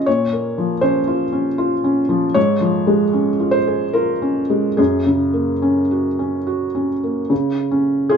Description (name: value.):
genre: neoclassical minimalist piano.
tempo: 71-80 BPM.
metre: 3/4.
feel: rubato.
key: unclear.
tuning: A4 = 439 Hz.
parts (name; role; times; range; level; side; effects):
felt-muted upright piano; solo; 0.0-8.2 s; Gb2 to Db5; -16 LUFS; equal; none.
room: light reverb.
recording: band playing live in one room, nothing above 7.7 kHz.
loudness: -16 LUFS.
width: side -6 dB against mid.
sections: 0.0-7.3 A section.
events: none.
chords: 0.1 Bbmadd9; 2.4 Db/Ab; 4.8 Gbadd9; 7.3 N.C..